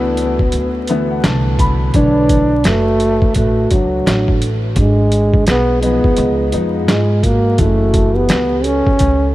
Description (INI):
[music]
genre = hip hop, jazz-hop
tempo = 85 BPM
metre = 4/4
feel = swing 62% on 16ths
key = B minor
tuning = A4 = 440 Hz
[part]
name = breathy trombone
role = melody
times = 0.0-9.3 s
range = F#3 to D4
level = -16 LUFS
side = equal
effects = none
[part]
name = vibraphone with soft mallets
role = second line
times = 0.0-9.3 s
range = D4 to B4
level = -22 LUFS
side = right 3 dB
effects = none
[part]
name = dark baby grand piano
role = accompaniment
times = 0.0-8.6 s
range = D3 to B5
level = -21 LUFS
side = left 2 dB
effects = lush chorus
[part]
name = upright bass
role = bass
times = 0.0-9.3 s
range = F#1 to G#2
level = -17 LUFS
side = equal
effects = none
[part]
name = boom bap sampler-style drum kit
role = drums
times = 0.2-9.2 s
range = hi-hat, kick drum, snare drum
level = -17 LUFS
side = equal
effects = none
[sound]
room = light reverb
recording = vinyl crackle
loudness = -12 LUFS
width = side -16 dB against mid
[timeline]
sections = 0.0-1.9 A section; 1.9-9.3 B section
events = grand piano fill 0.5-1.9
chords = 0.0 Bm11; 4.8 G#m; 6.2 C#7; 7.6 F#m7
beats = 0.53 1.24 | 1.94 2.65 3.35 4.06 | 4.77 5.47 6.18 6.88 | 7.59 8.30 9.00